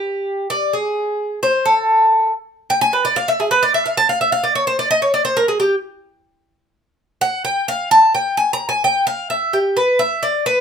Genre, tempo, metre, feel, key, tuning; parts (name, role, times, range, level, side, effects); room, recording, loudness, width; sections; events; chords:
latin; 130 BPM; 4/4; straight; A4 = 442 Hz
Cuban tres; solo; 0.0-10.6 s; G4 to Bb5; -14 LUFS; equal
light reverb; close, detailed microphones; -15 LUFS; side -7 dB against mid
0.0-10.6 A section
Cuban tres solo 0.0-10.6